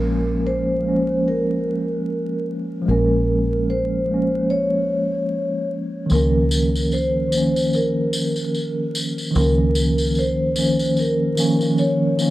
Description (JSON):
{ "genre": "trip hop", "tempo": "74 BPM", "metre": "4/4", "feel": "swing 57% on 16ths", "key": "Bb minor", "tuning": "A4 = 439 Hz", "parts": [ { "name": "vibraphone with soft mallets", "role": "melody", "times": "0.0-12.3 s", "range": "Bb4 to Db5", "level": "-22 LUFS", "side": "equal", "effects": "dub echo" }, { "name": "mellow tine electric piano", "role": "accompaniment", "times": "0.0-12.3 s", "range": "Eb3 to Db4", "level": "-21 LUFS", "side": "equal", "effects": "medium stereo tremolo" }, { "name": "deep dub fingered electric bass", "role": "bass", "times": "0.0-12.3 s", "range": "Bb1 to Db2", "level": "-23 LUFS", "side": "equal", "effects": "tube saturation" }, { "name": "tambourine", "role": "percussion", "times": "6.1-12.3 s", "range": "none", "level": "-28 LUFS", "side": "left 1 dB", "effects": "none" } ], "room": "moderate spring reverb, RT60 2.0 s", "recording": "vinyl crackle", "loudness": "-18 LUFS", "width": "side -16 dB against mid", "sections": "0.0-12.3 A section", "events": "none", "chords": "0.0 Bbm7; 6.1 Db69" }